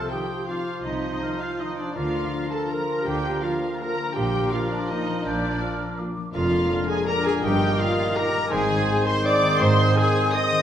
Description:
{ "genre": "classical, orchestral ballroom waltz", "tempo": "165 BPM", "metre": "3/4", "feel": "uneven beats, rubato", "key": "Bb major", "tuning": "A4 = 440 Hz", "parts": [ { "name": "muted chamber violin section", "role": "melody", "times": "0.0-10.6 s", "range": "D5 to Eb6", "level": "-31 LUFS", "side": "left 4 dB", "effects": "none" }, { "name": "dark clarinet", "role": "second line", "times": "0.0-10.6 s", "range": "D4 to Eb5", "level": "-33 LUFS", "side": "left 2 dB", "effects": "none" }, { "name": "mellow hollow concert flute", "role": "second line", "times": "0.0-10.6 s", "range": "Bb5 to G6", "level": "-34 LUFS", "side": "left 1 dB", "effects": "none" }, { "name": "muted chamber violin section", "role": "second line", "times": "0.0-10.6 s", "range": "D5 to Eb6", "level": "-34 LUFS", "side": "left 2 dB", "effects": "none" }, { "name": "warm oboe", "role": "second line", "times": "0.0-10.6 s", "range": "Bb4 to C5", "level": "-33 LUFS", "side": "right 1 dB", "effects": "none" }, { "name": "muted chamber viola section", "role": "accompaniment", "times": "0.0-10.6 s", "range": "D4 to Eb5", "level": "-30 LUFS", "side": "right 1 dB", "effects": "none" }, { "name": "warm bassoon", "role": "accompaniment", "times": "0.0-10.6 s", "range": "D3 to F3", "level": "-32 LUFS", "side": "right 2 dB", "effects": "none" }, { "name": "concert harp", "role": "arpeggios", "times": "0.0-10.6 s", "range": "F2 to C5", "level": "-31 LUFS", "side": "left 6 dB", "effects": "none" }, { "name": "warm trumpet section", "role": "stabs", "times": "0.0-10.6 s", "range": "D4 to Eb5", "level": "-29 LUFS", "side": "right 2 dB", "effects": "none" }, { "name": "muted chamber cello section", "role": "bass", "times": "0.0-9.9 s", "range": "F2 to D3", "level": "-30 LUFS", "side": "right 2 dB", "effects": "none" }, { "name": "muted chamber double bass section", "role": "bass", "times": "0.0-9.9 s", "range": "F1 to D2", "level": "-31 LUFS", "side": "right 3 dB", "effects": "none" }, { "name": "clear trombone section", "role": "sustained chords", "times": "0.1-10.6 s", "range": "Ab2 to Ab3", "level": "-34 LUFS", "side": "right 2 dB", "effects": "none" }, { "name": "mellow French horn section", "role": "sustained chords", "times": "0.1-10.6 s", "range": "Bb3 to Ab4", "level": "-34 LUFS", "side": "left 3 dB", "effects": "none" } ], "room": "wet recital hall reverb, RT60 1.4 s", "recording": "none", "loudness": "-21 LUFS", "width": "side -10 dB against mid", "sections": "0.0-10.6 A section", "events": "none", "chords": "0.0 F7(no3)/C; 2.0 Bb/D; 4.2 Bb; 6.3 Bb7/F; 7.4 Eb/G; 8.5 Ab" }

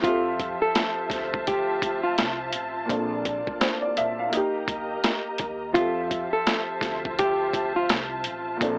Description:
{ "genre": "hip hop, boom-bap hip-hop", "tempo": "84 BPM", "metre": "4/4", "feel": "swing 60% on 16ths", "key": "F major", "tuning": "A4 = 441 Hz", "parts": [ { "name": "nylon-string guitar", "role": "melody", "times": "0.0-7.9 s", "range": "F4 to A4", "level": "-28 LUFS", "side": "equal", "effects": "high-pass filter, low-pass filter, analog delay" }, { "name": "dark upright piano", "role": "accompaniment", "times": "0.0-8.8 s", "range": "Bb2 to F5", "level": "-32 LUFS", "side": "equal", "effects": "cassette tape, high-pass filter, low-pass filter" }, { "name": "warm studio string section", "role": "sustained chords", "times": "0.0-8.8 s", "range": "Bb3 to Bb5", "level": "-34 LUFS", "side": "equal", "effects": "high-pass filter, low-pass filter" }, { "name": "upright bass", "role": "bass", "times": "0.0-8.8 s", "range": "A1 to F2", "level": "-42 LUFS", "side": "equal", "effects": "transformer saturation" }, { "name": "boom bap sampler-style drum kit", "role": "drums", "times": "0.0-8.8 s", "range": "hi-hat, kick drum, snare drum", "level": "-28 LUFS", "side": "equal", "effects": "none" } ], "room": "light reverb", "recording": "dry, gritty hardware recording, vinyl crackle, AM radio sound", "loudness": "-26 LUFS", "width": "mono", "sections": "0.0-8.8 A section", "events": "none", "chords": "0.0 Fmaj7; 2.9 Bbmaj7; 4.3 Eb; 5.8 Fmaj7" }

